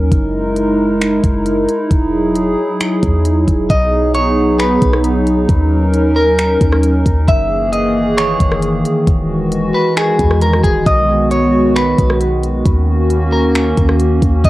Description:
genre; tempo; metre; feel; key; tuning
hip hop, atmospheric cloud-rap; 134 BPM; 4/4; half-time; B major; A4 = 439 Hz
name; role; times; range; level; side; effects
hollow soft pad; sustained chords; 0.0-14.5 s; D#3 to A#4; -15 LUFS; equal; chorus, sidechain pumping, cassette tape
clean 808-style bass; bass; 0.0-14.5 s; E1 to E2; -17 LUFS; equal; none
smooth R&B drum kit; drums; 0.1-14.5 s; finger snaps, hi-hat, kick drum, rim click; -16 LUFS; equal; cassette tape
clean electric guitar; melody; 3.7-14.5 s; G#4 to E5; -18 LUFS; equal; cassette tape, analog delay
room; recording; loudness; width
light reverb; home recording on cassette; -11 LUFS; side -17 dB against mid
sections
0.0-3.7 A section; 3.7-14.5 B section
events
none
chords
0.1 F#13; 1.9 Emaj9; 3.7 B6; 5.5 D#m7; 7.3 F#13; 9.1 Emaj9; 10.9 B6; 12.7 D#m7

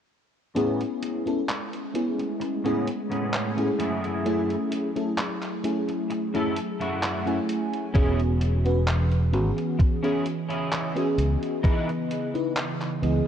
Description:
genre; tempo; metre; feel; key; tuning
vaporwave; 65 BPM; 4/4; straight; unclear; A4 = 440 Hz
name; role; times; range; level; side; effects
FM electric piano with soft pad layer; accompaniment; 0.6-13.3 s; E3 to G#5; -27 LUFS; left 1 dB; analog chorus, tape echo
warbly tape-like pad; sustained chords; 1.0-13.3 s; C#3 to D#5; -33 LUFS; right 3 dB; chorus, built-in reverb
electric guitar at the edge of break-up; riff; 0.6-12.1 s; F#2 to B4; -32 LUFS; equal; analog chorus, low-pass filter, tape echo
detuned 8-bit digital drum machine; drums; 0.6-13.2 s; handclaps, hi-hat; -33 LUFS; equal; none
modern bright fingered electric bass; bass; 7.9-13.2 s; E1 to C#2; -23 LUFS; equal; none
electronic kick drum; drums; 7.9-11.8 s; none; -20 LUFS; equal; none
room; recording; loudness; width
light reverb, digital ambience; cassette tape; -23 LUFS; side -9 dB against mid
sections
0.6-13.3 A section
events
filter sweep on clean electric guitar 0.6-13.3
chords
0.6 Amaj9; 3.8 F#m9; 8.0 E6; 11.6 C#m9

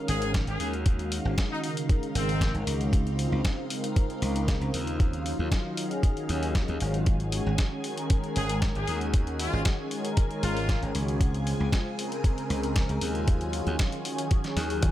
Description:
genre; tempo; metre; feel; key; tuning
nu-disco, nu disco; 116 BPM; 4/4; straight; Ab mixolydian; A4 = 440 Hz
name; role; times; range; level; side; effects
warm analog pad; accompaniment; 0.0-14.9 s; Db3 to Bb4; -32 LUFS; equal; chorus, vintage 12-bit sampler grit, sidechain pumping, dub echo
string machine, full ensemble; sustained chords; 0.0-14.9 s; Eb4 to Ab5; -38 LUFS; equal; ensemble chorus, sidechain pumping
brilliant trumpet section; melody; 0.1-2.5, 8.4-10.8 s; C4 to Ab4; -36 LUFS; left 2 dB; dub echo
glassy slap bass; bass; 0.1-14.9 s; Ab1 to Eb2; -29 LUFS; equal; none
dusty soul sampler-style drum kit; drums; 0.1-14.9 s; hi-hat, snare drum, toms; -34 LUFS; left 1 dB; small room ambience
electronic kick drum; drums; 0.3-14.9 s; none; -24 LUFS; equal; small room ambience
room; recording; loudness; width
digital ambience; none; -25 LUFS; side -13 dB against mid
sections
0.0-14.9 A section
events
filter sweep on analog synth pad 0.0-14.9; drum fill 14.6-14.9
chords
0.0 Ab7sus4; 2.9 Dbmaj7; 5.0 Ebm9; 7.1 Ab7sus4; 11.2 Dbmaj7; 13.3 Ebm9

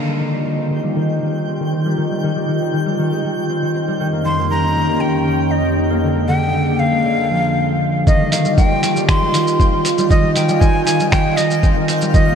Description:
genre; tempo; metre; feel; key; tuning
folktronica; 118 BPM; 4/4; straight; F minor; A4 = 440 Hz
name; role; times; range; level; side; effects
warbly tape-like pad; sustained chords; 0.0-12.3 s; F2 to Ab5; -21 LUFS; right 2 dB; chorus, built-in reverb
concert harp; arpeggios; 0.0-12.3 s; D3 to Eb4; -18 LUFS; left 1 dB; low-pass filter, ping-pong delay
twinkling granular texture; texture; 0.8-12.3 s; F5 to G6; -31 LUFS; equal; built-in reverb, wide subtle chorus
breathy bright jazz flute; melody; 4.3-12.3 s; Eb5 to C6; -20 LUFS; left 1 dB; ping-pong delay
electronic kick drum; drums; 8.1-12.2 s; none; -14 LUFS; equal; none
lo-fi sampler-style drum kit; drums; 8.1-12.2 s; finger snaps, hi-hat, shaker; -24 LUFS; right 2 dB; low-pass filter on perc, low-pass filter on snare, low-pass filter on hats, low-pass filter on room
room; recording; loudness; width
wet huge ambient reverb, RT60 4.4 s; dreamy mix soaked in reverb; -14 LUFS; side -7 dB against mid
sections
0.0-8.1 A section; 8.1-12.3 B section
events
filter sweep on harp 0.0-8.1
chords
0.0 F7sus2; 4.0 Eb7/F; 6.0 Bb7/F; 8.1 Fm9

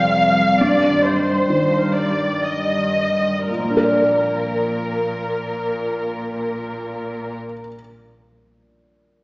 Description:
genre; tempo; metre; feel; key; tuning
cinematic, emotional film score for orchestra; 56-72 BPM; 3/4; rubato; Bb major; A4 = 438 Hz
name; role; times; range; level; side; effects
warm symphonic violin section; melody; 0.0-7.4 s; Bb4 to F5; -20 LUFS; equal; none
dark baby grand piano; accompaniment; 0.0-9.2 s; F2 to D5; -21 LUFS; equal; none
concert harp; arpeggios; 0.0-7.8 s; F2 to D5; -23 LUFS; equal; none
rich symphonic cello section; bass; 0.0-7.4 s; F2 to Bb2; -28 LUFS; equal; none
room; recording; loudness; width
wet scoring stage reverb, RT60 1.5 s; heard from further back in the room, small speaker sound, faint mains hum; -17 LUFS; side -25 dB against mid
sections
0.0-3.5 A section; 3.5-6.6 B section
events
slowing down 0.0-3.5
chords
0.0 Fsus2; 0.6 Eb/G; 3.5 Bb

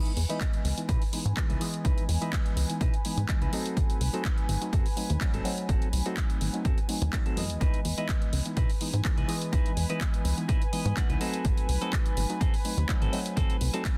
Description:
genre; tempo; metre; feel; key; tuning
filtered disco house; 125 BPM; 4/4; swing 53% on 16ths; C# minor; A4 = 440 Hz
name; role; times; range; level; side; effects
reed electric piano; accompaniment; 0.0-14.0 s; E3 to D#5; -37 LUFS; equal; phaser, sidechain pumping, low-pass filter
warm studio violin section; sustained chords; 0.0-14.0 s; B4 to G#5; -42 LUFS; equal; sidechain pumping, low-pass filter
clean electric guitar; riff; 0.0-13.8 s; B#3 to F#5; -40 LUFS; equal; sidechain pumping, low-pass filter
house drum kit; drums; 0.1-14.0 s; handclaps, hi-hat; -39 LUFS; equal; sidechain pumping on hats, small room reverb, sidechain pumping on cymbals
plucky analog bass; bass; 0.2-13.7 s; G#1 to B2; -31 LUFS; equal; sidechain pumping, low-pass filter
electronic kick drum; drums; 0.4-14.0 s; none; -30 LUFS; equal; small room reverb
room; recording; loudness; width
little or no reverb; dense, heavily limited modern master; -28 LUFS; mono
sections
0.0-14.0 A section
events
filter sweep 0.0-14.0; clean electric guitar fill 10.5-11.4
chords
0.0 C#m9; 3.5 G#7b9; 7.6 C#m9; 11.2 G#7b9

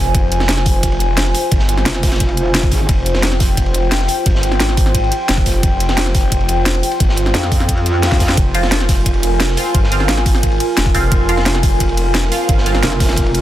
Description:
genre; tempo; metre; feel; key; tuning
dark technical drum and bass; 175 BPM; 4/4; straight; F minor; A4 = 439 Hz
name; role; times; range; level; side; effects
dark analog pad; sustained chords; 0.0-13.4 s; F4 to Ab5; -20 LUFS; equal; chorus, sidechain pumping
snarling distorted saw bass; bass; 0.0-12.8 s; F1 to Ab1; -17 LUFS; equal; distortion, overdrive
crunchy breakbeat drum kit; drums; 0.1-13.4 s; ride cymbal, snare drum; -27 LUFS; equal; high-pass filter on cymbals, high-pass filter on snare, high-pass filter on room
drum and bass drum kit; drums; 0.1-13.4 s; hi-hat, ride cymbal, snare drum; -19 LUFS; equal; overdrive
electronic kick drum; drums; 0.1-13.2 s; none; -15 LUFS; equal; overdrive
metallic wobble bass; bass; 1.9-2.9, 7.3-8.4, 12.8-13.4 s; F1 to F2; -18 LUFS; equal; distortion, chorus
swell; sound effects; 7.8-8.4 s; none; -27 LUFS; left 3 dB; none
band-passed chord stab; stabs; 8.5-13.4 s; F3 to F4; -22 LUFS; right 3 dB; phaser, analog chorus, vintage 12-bit sampler grit, tape echo
room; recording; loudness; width
light reverb; dense, heavily limited modern master; -12 LUFS; side -13 dB against mid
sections
0.0-13.4 A section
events
swell 7.8-8.4; drum fill 8.0-8.4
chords
0.0 Fm

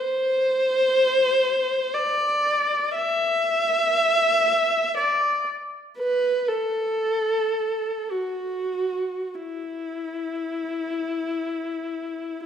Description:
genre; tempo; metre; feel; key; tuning
classical, free, expressive piece for unaccompanied viola; free time; none; none; unclear; A4 = 440 Hz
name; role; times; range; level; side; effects
dark viola; solo; 0.0-12.5 s; E4 to E5; -21 LUFS; equal; none
room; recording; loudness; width
wet recital hall reverb, RT60 1.4 s; recorded in a church or concert hall; -21 LUFS; side -8 dB against mid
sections
0.0-12.5 A section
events
none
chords
none

